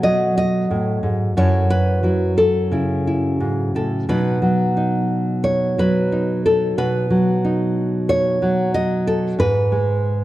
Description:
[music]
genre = folk, solo fingerstyle acoustic guitar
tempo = 90 BPM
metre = 4/4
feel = rubato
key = unclear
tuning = A4 = 440 Hz
[part]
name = nylon-string guitar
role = solo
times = 0.0-10.2 s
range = F#2 to D#5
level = -16 LUFS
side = equal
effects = none
[sound]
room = moderate scoring stage reverb, RT60 1.7 s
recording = dark, warm production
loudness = -16 LUFS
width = side -15 dB against mid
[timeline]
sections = 0.0-4.1 A section; 4.1-10.2 B section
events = none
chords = 0.0 B7; 1.4 F#m7; 4.1 Badd9; 9.4 G#m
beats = 0.04 0.71 | 1.37 2.04 2.72 3.41 | 4.10 4.77 5.45 6.12 | 6.78 7.44 8.09 8.74 | 9.39 10.05

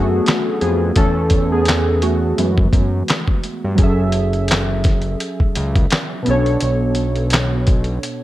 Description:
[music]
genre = lo-fi hip hop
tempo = 85 BPM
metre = 4/4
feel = swing 57% on 16ths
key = F# minor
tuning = A4 = 439 Hz
[part]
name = warbly lo-fi synth keys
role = accompaniment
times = 0.0-8.2 s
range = B2 to E5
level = -19 LUFS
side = right 1 dB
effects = chorus, low-pass filter
[part]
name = fat analog bass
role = bass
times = 0.0-8.0 s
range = F#1 to G2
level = -19 LUFS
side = equal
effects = none
[part]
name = dusty soul sampler-style drum kit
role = drums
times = 0.3-8.2 s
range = handclaps, hi-hat, kick drum, snare drum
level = -17 LUFS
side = equal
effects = overdrive
[sound]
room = light reverb, digital ambience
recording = none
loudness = -15 LUFS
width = side -15 dB against mid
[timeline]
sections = 0.0-3.8 A section; 3.8-8.2 B section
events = synth keys solo 0.0-3.8; synth keys fill 8.0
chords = 0.0 E9sus4 (rootless); 1.0 Aadd9/E; 2.4 F#m11; 3.8 F#m9; 6.3 Bm9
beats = 0.26 | 0.96 1.67 2.38 3.08 | 3.79 4.49 5.20 5.91 | 6.61 7.32 8.02

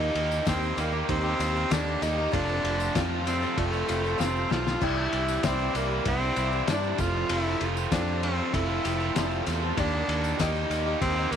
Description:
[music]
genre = folk rock and heartland rock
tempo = 97 BPM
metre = 4/4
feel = straight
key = unclear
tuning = A4 = 439 Hz
[part]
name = warm tenor saxophone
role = melody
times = 0.0-11.4 s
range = A3 to F4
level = -30 LUFS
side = equal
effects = none
[part]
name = picked twelve-string acoustic guitar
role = accompaniment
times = 0.0-11.4 s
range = C3 to A4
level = -34 LUFS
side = left 12 dB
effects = none
[part]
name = reed electric piano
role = accompaniment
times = 0.0-11.4 s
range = Bb3 to E5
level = -38 LUFS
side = right 12 dB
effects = fast tremolo
[part]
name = crunchy overdriven guitar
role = riff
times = 0.0-11.4 s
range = F2 to G4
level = -32 LUFS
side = right 14 dB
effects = none
[part]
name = fingered electric bass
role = bass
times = 0.0-11.4 s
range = F1 to G2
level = -31 LUFS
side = equal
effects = none
[part]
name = cloth-damped thuddy drum kit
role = drums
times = 0.2-11.4 s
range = crash cymbal, kick drum, ride cymbal, snare drum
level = -31 LUFS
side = left 4 dB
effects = none
[part]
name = tambourine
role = percussion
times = 0.2-11.4 s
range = none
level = -45 LUFS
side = left 11 dB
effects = none
[sound]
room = light reverb, small room ambience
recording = 1960s-style stereo with parts hard left and right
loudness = -24 LUFS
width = side -8 dB against mid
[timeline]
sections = 0.0-11.4 A section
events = drum fill 4.2-4.8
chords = 0.0 Eb; 2.3 F; 4.8 Cadd9; 7.0 F; 9.8 Eb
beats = 0.46 1.09 1.71 | 2.33 2.95 3.57 4.20 | 4.82 5.44 6.06 6.68 | 7.30 7.92 8.54 9.15 | 9.77 10.39 11.01

